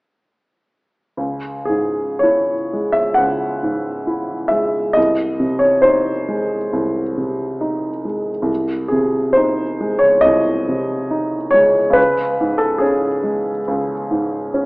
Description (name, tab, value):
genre	classical, romantic nocturne for solo piano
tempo	68 BPM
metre	4/4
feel	rubato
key	unclear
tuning	A4 = 441 Hz
part	warm grand piano	solo	1.2-14.7 s	B#1 to F#5	-15 LUFS	equal	none
room	wet recital hall reverb, RT60 1.5 s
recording	AM radio sound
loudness	-15 LUFS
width	side -25 dB against mid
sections	1.2-14.7 A section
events	none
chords	1.2 C#m; 5.0 G#/B#; 12.0 C#5